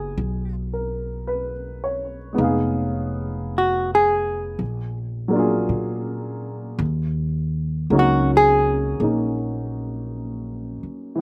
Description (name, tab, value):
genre	jazz ballad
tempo	54 BPM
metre	4/4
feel	swing 66% on 8ths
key	unclear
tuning	A4 = 440 Hz
part	hollow-body jazz guitar	melody	0.0-9.4 s	F#4 to G#4	-21 LUFS	equal	none
part	warm baby grand piano	accompaniment	0.0-11.2 s	E3 to F5	-27 LUFS	equal	slapback echo
part	upright bass	bass	0.0-10.9 s	F1 to A#2	-28 LUFS	equal	none
room	little or no reverb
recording	recorded outdoors, with no room sound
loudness	-23 LUFS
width	mono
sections	0.0-11.2 A section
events	hollow-body jazz guitar solo 0.0-11.2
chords	0.0 G#m7; 2.4 Fm7b5; 4.6 A#7b13; 6.8 D#m7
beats	0.19 1.29 | 2.40 3.50 4.60 5.71 | 6.81 7.91 9.00 10.10 | 11.20